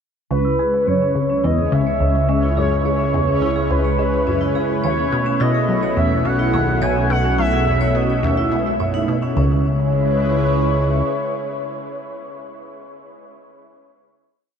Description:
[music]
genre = ambient, sequencer-driven space music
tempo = 106 BPM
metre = 4/4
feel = straight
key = C# minor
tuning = A4 = 443 Hz
[part]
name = expressive portamento lead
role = melody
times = 0.3-12.4 s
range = B4 to G#5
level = -22 LUFS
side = equal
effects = wide subtle chorus, ping-pong delay
[part]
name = lush unison pad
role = sustained chords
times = 0.3-12.4 s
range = B2 to B4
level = -23 LUFS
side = left 1 dB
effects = chorus, phaser
[part]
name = vibraphone with medium mallets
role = arpeggios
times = 0.3-9.6 s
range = G#3 to C#5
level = -26 LUFS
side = right 2 dB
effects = auto-pan, low-pass filter, ping-pong delay
[part]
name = resonant blip pluck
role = riff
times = 0.3-9.6 s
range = C#2 to G#3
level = -23 LUFS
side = equal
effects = phaser, ping-pong delay
[part]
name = fat analog bass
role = bass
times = 0.3-11.0 s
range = C#2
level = -22 LUFS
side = equal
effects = none
[part]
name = bubbling stepped-filter texture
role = texture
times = 0.7-9.4 s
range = C#4 to C#5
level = -30 LUFS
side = left 2 dB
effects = chorus, built-in reverb
[sound]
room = moderate huge ambient reverb, RT60 8.5 s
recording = cassette tape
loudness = -16 LUFS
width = side -7 dB against mid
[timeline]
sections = 0.3-9.4 A section; 9.4-11.6 final chord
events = filter sweep on vibraphone 0.3-9.4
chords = 0.3 C#m7; 4.8 B7sus4; 9.4 C#m7

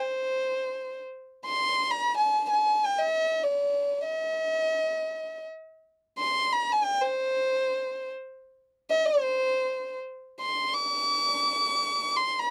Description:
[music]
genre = Arabic maqam ensemble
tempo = free time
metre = none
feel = none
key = C maqam huzam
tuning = A4 = 440 Hz
[part]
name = dark violin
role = solo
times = 0.0-12.5 s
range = C5 to D6-46c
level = -27 LUFS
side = equal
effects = none
[sound]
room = little or no reverb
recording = dry, close 1970s-style studio recording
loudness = -27 LUFS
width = mono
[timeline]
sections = 0.0-1.1 A section; 1.1-10.1 A section; 10.1-12.5 A section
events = none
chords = none

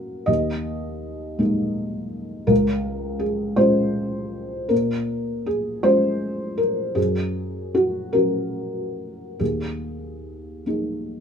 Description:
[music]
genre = neoclassical minimalist piano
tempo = 48-56 BPM (dotted quarters)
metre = 6/8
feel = rubato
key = unclear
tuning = A4 = 440 Hz
[part]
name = felt-muted upright piano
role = solo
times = 0.0-11.2 s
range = Db2 to Eb5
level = -21 LUFS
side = equal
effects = none
[sound]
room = moderate studio reverb, RT60 0.7 s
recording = minimal, uncompressed stereo recording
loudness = -21 LUFS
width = side -7 dB against mid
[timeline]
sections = 0.0-11.2 A section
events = none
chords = 0.3 Ebsus4; 2.5 Db; 4.7 Bbm7; 7.0 Gb; 9.4 Ebsus4

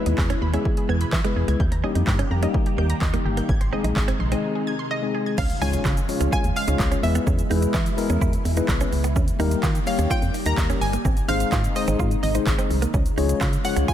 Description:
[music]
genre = dance-pop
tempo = 127 BPM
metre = 4/4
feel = straight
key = unclear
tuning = A4 = 441 Hz
[part]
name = mellow tine electric piano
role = accompaniment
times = 0.0-13.9 s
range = G3 to Db5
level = -28 LUFS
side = left 7 dB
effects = sidechain pumping
[part]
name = soft string machine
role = sustained chords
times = 0.0-13.9 s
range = B2 to G4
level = -30 LUFS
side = equal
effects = phaser, ensemble chorus, sidechain pumping
[part]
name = direct-recorded clean electric guitar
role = riff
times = 0.0-13.9 s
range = G#3 to F4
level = -31 LUFS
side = right 8 dB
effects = analog chorus
[part]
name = organ-like FM bass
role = bass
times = 0.1-13.8 s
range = G1 to E3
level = -23 LUFS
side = equal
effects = sidechain pumping
[part]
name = punchy analog drum machine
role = drums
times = 0.1-13.9 s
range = crash cymbal, handclaps, hi-hat, kick drum, shaker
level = -24 LUFS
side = equal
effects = none
[part]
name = wide unison pluck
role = arpeggios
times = 0.2-5.3 s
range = G4 to G#6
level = -34 LUFS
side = right 2 dB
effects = auto-pan, sidechain pumping, tape echo
[part]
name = analog pluck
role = melody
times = 4.9-13.9 s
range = Eb5 to Bb5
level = -29 LUFS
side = equal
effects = chorus, tape echo
[part]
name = impact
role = sound effects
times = 5.4-7.3 s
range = none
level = -36 LUFS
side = equal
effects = none
[sound]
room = light reverb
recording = none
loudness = -20 LUFS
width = side -11 dB against mid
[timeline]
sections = 0.0-5.4 A section; 5.4-13.9 B section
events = break 4.4-5.4; impact 5.4-7.3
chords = 0.0 E; 1.6 Eb; 3.5 Ab; 5.4 Db; 7.0 E; 9.2 Eb; 11.0 Ab; 12.9 Db

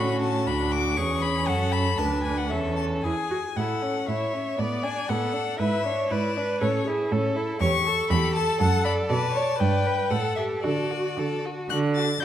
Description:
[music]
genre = quick classical-period movement for string quartet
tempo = 118 BPM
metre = 2/4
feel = rubato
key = A major, D major from 7.6 s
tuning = A4 = 439 Hz
[part]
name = rich violin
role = melody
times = 0.0-12.2 s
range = C#5 to A6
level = -29 LUFS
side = left 7 dB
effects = none
[part]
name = rich violin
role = second line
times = 0.0-12.2 s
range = B3 to F#5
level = -30 LUFS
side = left 2 dB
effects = none
[part]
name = clear viola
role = accompaniment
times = 0.0-12.2 s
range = C#4 to D5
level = -29 LUFS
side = right 2 dB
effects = none
[part]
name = rich cello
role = bass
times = 0.0-12.2 s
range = D2 to D3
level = -27 LUFS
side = right 3 dB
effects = none
[sound]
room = wet recital hall reverb, RT60 1.6 s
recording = none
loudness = -23 LUFS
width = side -11 dB against mid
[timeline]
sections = 0.0-3.6 A section; 3.6-11.7 B section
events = none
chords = 0.5 Bm/D; 1.0 E; 1.5 F#m; 2.0 Bm7/D; 2.5 A/E; 3.0 E; 3.6 A; 4.6 Bm7/A; 5.6 E7/G#; 6.6 A; 7.6 A7/E; 8.6 D/F#; 9.1 Bm; 9.6 G; 10.1 A5; 10.6 D

